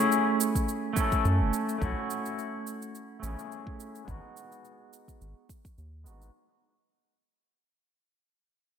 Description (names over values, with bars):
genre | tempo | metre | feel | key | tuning
sunset chillout | 106 BPM | 4/4 | swing 55% on 16ths | unclear | A4 = 439 Hz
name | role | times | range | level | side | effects
electric guitar at the edge of break-up | accompaniment | 0.0-6.3 s | G#3 to A4 | -29 LUFS | equal | auto-pan, low-pass filter, digital delay
cabasa | drums | 0.1-6.3 s | none | -37 LUFS | right 8 dB | none
electronic kick drum | drums | 0.6-5.8 s | none | -32 LUFS | equal | none
round analog bass | bass | 1.3-6.3 s | F#1 to F#2 | -29 LUFS | equal | tube saturation
room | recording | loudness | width
moderate lush hall reverb, RT60 1.6 s | bright 1980s-style digital production | -26 LUFS | side -8 dB against mid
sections
0.0-6.3 A section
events
fade-out 0.0-6.3; filter sweep on clean electric guitar 0.0-6.3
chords
0.0 F#m7; 1.8 B7sus4 (rootless); 4.1 G#m7